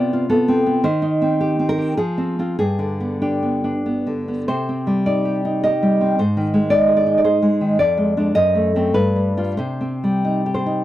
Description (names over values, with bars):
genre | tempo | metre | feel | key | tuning
romantic piece for solo classical guitar | 90-112 BPM | 3/4 | rubato | C minor | A4 = 440 Hz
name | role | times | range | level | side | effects
nylon-string guitar | solo | 0.0-10.8 s | F2 to Eb5 | -16 LUFS | equal | none
room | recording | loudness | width
little or no reverb | dry, close 1970s-style studio recording | -16 LUFS | side -14 dB against mid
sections
0.0-10.8 A section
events
none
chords
0.0 Bdim/C; 0.8 Cm/Eb; 2.0 Fm; 2.6 G; 4.5 Cm; 6.2 Ab; 7.8 Ddim/F; 8.4 F#dim7; 8.9 G7; 9.6 Cm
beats
0.28 | 0.83 1.38 1.97 | 2.57 3.19 3.83 | 4.47 5.06 5.62 | 6.17 6.71 7.25 | 7.80 8.36 8.95 | 9.57 10.23